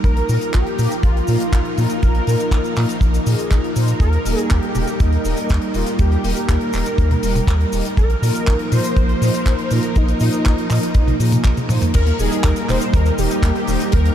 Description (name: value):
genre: italo disco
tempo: 121 BPM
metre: 4/4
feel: straight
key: Eb major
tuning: A4 = 439 Hz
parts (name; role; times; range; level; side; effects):
- wide unison lead; melody; 0.0-14.1 s; Eb4 to C5; -25 LUFS; equal; ensemble chorus, tape echo
- string machine, full ensemble; sustained chords; 0.0-14.1 s; F3 to Bb4; -23 LUFS; right 1 dB; ensemble chorus
- round analog bass; bass; 0.0-14.1 s; Eb1 to Bb2; -18 LUFS; equal; none
- damped 70s drum kit; drums; 0.0-14.1 s; cabasa, crash cymbal, handclaps, hi-hat, toms; -27 LUFS; left 1 dB; studio reverb
- kick drum; drums; 0.0-14.0 s; none; -17 LUFS; equal; studio reverb
- mellow synth brass; stabs; 0.3-13.8 s; Bb3 to C5; -27 LUFS; left 1 dB; chorus, diffuse ambient delay
- wide unison pluck; arpeggios; 11.9-14.1 s; Eb3 to Eb4; -28 LUFS; right 3 dB; vintage 12-bit sampler grit, diffuse ambient delay
room: moderate huge ambient reverb, RT60 7.8 s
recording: dreamy mix soaked in reverb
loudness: -15 LUFS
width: side -10 dB against mid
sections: 0.0-11.9 A section; 11.9-14.1 B section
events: drum fill 11.4-11.9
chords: 0.0 Bbsus4; 4.0 Eb; 8.0 Bbsus4; 11.9 Eb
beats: | 0.04 0.54 1.03 1.53 | 2.03 2.52 3.02 3.51 | 4.01 4.50 5.00 5.50 | 5.99 6.49 6.98 7.48 | 7.98 8.47 8.97 9.46 | 9.96 10.46 10.95 11.45 | 11.94 12.44 12.94 13.43 | 13.93